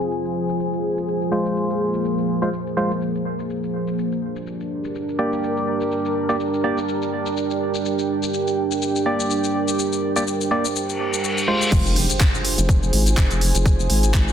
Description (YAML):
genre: bass house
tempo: 124 BPM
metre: 4/4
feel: swing 56% on 16ths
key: F dorian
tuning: A4 = 440 Hz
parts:
  - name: deep dark ambient pad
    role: sustained chords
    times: 0.0-14.3 s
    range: F3 to Bb4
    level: -25 LUFS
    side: equal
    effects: chorus, built-in reverb, sidechain pumping
  - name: garage drum kit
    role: drums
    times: 0.0-14.3 s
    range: crash cymbal, handclaps, hi-hat, shaker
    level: -26 LUFS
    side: left 2 dB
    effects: none
  - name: warbly tape-like pad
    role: texture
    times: 0.0-14.3 s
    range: D4 to Ab5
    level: -26 LUFS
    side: right 2 dB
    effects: chorus, built-in reverb, sidechain pumping
  - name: percussive organ stab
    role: stabs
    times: 1.3-12.0 s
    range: Ab3 to D5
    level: -24 LUFS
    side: right 1 dB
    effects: chorus, cassette tape, sidechain pumping, digital delay
  - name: reverse cymbal and impact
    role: sound effects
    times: 10.9-13.7 s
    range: none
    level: -26 LUFS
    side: left 1 dB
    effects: none
  - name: vowel-sweep wobble bass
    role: bass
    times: 11.7-14.3 s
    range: F1 to Ab1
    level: -19 LUFS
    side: equal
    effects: chorus, overdrive, sidechain pumping
  - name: electronic kick drum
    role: drums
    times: 11.7-14.2 s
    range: none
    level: -19 LUFS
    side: equal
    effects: none
room: light reverb, digital ambience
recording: dense, heavily limited modern master, low-pass filter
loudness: -19 LUFS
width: side -9 dB against mid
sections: 0.0-11.7 A section; 11.7-14.3 B section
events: filter sweep 0.0-11.7; reverse cymbal 10.9-11.7; drop 11.7-14.3; impact 11.7-13.7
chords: 0.0 Fm; 4.0 Gm; 11.7 Fm